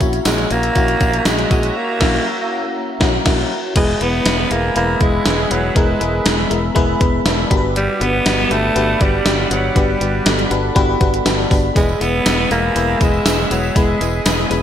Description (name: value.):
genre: 1980s-style pop.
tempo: 120 BPM.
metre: 4/4.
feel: straight.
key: unclear.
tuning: A4 = 442 Hz.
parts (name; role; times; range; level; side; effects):
FM electric piano; accompaniment; 0.0-14.6 s; G#3 to B4; -21 LUFS; left 4 dB; chorus.
sweeping resonant pad; sustained chords; 0.0-14.6 s; G3 to E6; -25 LUFS; right 2 dB; chorus.
modern bright fingered electric bass; bass; 0.0-14.6 s; E1 to A#1; -22 LUFS; equal; none.
gated 80s digital drum machine; drums; 0.0-14.6 s; crash cymbal, hi-hat, kick drum, snare drum, tambourine; -18 LUFS; equal; gated reverb, gated reverb snare.
tambourine; percussion; 0.0-1.7, 11.8-14.6 s; none; -34 LUFS; right 11 dB; none.
raspy alto saxophone; melody; 0.3-14.5 s; F#3 to B3; -19 LUFS; right 1 dB; ping-pong delay.
electric guitar at the edge of break-up; second line; 6.3-14.6 s; B3 to E4; -28 LUFS; right 1 dB; analog chorus, ping-pong delay.
room: moderate lush hall reverb, RT60 2.1 s.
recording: bright 1980s-style digital production.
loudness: -14 LUFS.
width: side -9 dB against mid.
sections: 0.0-3.8 A section; 3.8-14.6 B section.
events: band accent 1.8-3.8.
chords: 0.0 F#7/A#; 3.8 E; 7.5 Gmaj7; 11.8 E.